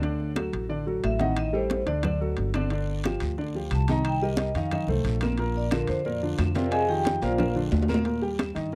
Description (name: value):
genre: Afro-Cuban jazz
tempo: 179 BPM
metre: 4/4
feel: straight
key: Bb major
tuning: A4 = 443 Hz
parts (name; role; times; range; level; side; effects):
- warm concert grand piano; accompaniment; 0.0-8.8 s; Bb2 to G5; -32 LUFS; equal; none
- upright bass; bass; 0.0-8.8 s; G1 to G2; -31 LUFS; equal; none
- congas; percussion; 0.0-8.8 s; none; -34 LUFS; equal; none
- timbales; percussion; 0.0-8.7 s; none; -34 LUFS; equal; none
- claves; percussion; 0.4-8.6 s; none; -49 LUFS; equal; none
- vibraphone with medium hard mallets; melody; 1.0-7.5 s; F4 to Bb5; -32 LUFS; equal; tape echo
- guiro; percussion; 2.7-8.8 s; none; -50 LUFS; equal; none
room: small room ambience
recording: dry, close 1970s-style studio recording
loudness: -26 LUFS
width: mono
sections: 0.0-8.1 A section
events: vibraphone solo 0.0-8.8; drum fill 7.4-8.1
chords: 0.0 D; 1.4 Am7b5; 2.0 D; 2.7 G5; 4.0 Cm7; 4.7 F7; 5.4 Bb; 6.7 Fm7; 7.4 Bbadd9; 8.1 Eb